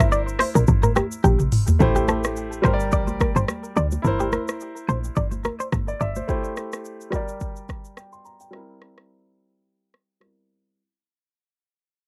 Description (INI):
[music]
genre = afrobeats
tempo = 107 BPM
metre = 4/4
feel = swing 55% on 16ths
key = unclear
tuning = A4 = 441 Hz
[part]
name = clear concert grand piano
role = accompaniment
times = 0.0-10.8 s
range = G3 to C6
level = -31 LUFS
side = equal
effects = low-pass filter, cassette tape
[part]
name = clean electric guitar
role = riff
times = 0.0-6.1 s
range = G4 to D5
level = -27 LUFS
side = equal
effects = warbly pitch drift, low-pass filter, cassette tape, analog delay
[part]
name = woody log drum bass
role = bass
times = 0.0-6.2 s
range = G1 to D2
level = -25 LUFS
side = equal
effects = none
[part]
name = afro-pop drum kit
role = drums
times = 0.0-10.4 s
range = hi-hat, kick drum, rim click, shaker, toms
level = -25 LUFS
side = equal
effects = none
[part]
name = congas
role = percussion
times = 0.4-6.3 s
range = none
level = -35 LUFS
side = equal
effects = none
[sound]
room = little or no reverb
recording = home recording on cassette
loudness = -22 LUFS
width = mono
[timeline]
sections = 0.0-1.8 A section; 1.8-10.8 B section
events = drum fill 1.2-1.8; fade-out 1.8-10.8; filter sweep 1.8-10.8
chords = 0.0 C7/G; 1.8 Am7; 2.6 Gm; 4.0 C7/G; 6.3 Am7; 7.1 Gm; 8.5 C7/G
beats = 0.12 0.68 1.24 | 1.80 2.36 2.92 3.49 | 4.05 4.61 5.17 5.73 | 6.29 6.85 7.41 7.97 | 8.53 9.09 9.65 10.21